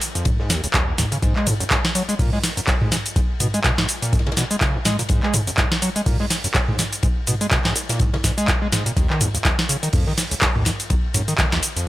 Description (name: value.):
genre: acid house.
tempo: 124 BPM.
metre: 4/4.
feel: swing 57% on 16ths.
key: unclear.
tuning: A4 = 440 Hz.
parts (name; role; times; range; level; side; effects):
booming analog drum machine; drums; 0.0-11.9 s; handclaps, hi-hat, shaker, snare drum, toms; -21 LUFS; equal; none.
modern studio drum kit; drums; 0.0-11.8 s; hi-hat, ride cymbal, snare drum; -33 LUFS; left 2 dB; sidechain pumping on cymbals, high-pass filter on cymbals, sidechain pumping on hats, high-pass filter on hats, high-pass filter on snare, high-pass filter on room.
overdriven acid bass; riff; 0.2-11.9 s; Ab1 to Ab3; -24 LUFS; equal; distortion, analog chorus, sidechain pumping, digital delay.
electronic kick drum; drums; 0.3-11.5 s; none; -22 LUFS; equal; none.
room: small room ambience.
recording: none.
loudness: -18 LUFS.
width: side -16 dB against mid.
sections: 0.0-11.9 A section.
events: none.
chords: none.